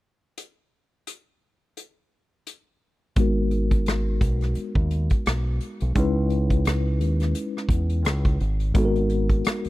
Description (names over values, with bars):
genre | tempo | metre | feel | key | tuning
R&B, neo-soul | 86 BPM | 4/4 | swing 58% on 16ths | G# minor | A4 = 440 Hz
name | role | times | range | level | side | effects
unplugged drum kit | drums | 0.4-9.7 s | hi-hat, kick drum, rim click | -24 LUFS | equal | none
mellow tine electric piano | accompaniment | 3.2-9.7 s | G#3 to B4 | -26 LUFS | left 2 dB | medium stereo tremolo, low-pass filter
deep dub fingered electric bass | bass | 3.2-9.7 s | G#1 to E2 | -24 LUFS | equal | none
room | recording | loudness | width
little or no reverb | dry, close 1970s-style studio recording | -21 LUFS | side -17 dB against mid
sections
0.4-3.2 A section; 3.2-8.7 B section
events
filter sweep on tine electric piano 3.2-8.7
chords
0.4 N.C.; 3.2 G#m9; 6.0 C#m9; 8.4 N.C.; 8.7 G#m9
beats
| 0.38 1.07 1.77 2.47 | 3.17 3.86 4.56 5.26 | 5.96 6.65 7.35 8.05 | 8.75 9.44